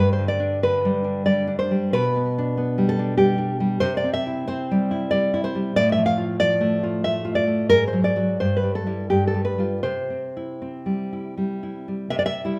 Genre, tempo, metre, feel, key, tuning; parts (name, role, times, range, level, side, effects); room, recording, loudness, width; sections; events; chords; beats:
romantic piece for solo classical guitar; 78-97 BPM; 3/4; rubato; G major, C major from 3.8 s; A4 = 440 Hz
nylon-string guitar; solo; 0.0-12.6 s; G2 to F5; -22 LUFS; equal
moderate recital hall reverb, RT60 1.3 s; -22 LUFS; mono
0.0-12.1 A section
0.0 G; 1.9 G/B; 3.8 C; 5.8 F/A; 7.7 Ab7#11; 8.4 G69; 9.1 G7; 9.9 C
0.63 1.27 | 1.94 2.58 3.20 | 3.82 4.47 5.12 | 5.75 6.40 7.05 | 7.72 8.40 9.11 | 9.85 10.61 11.38 | 12.12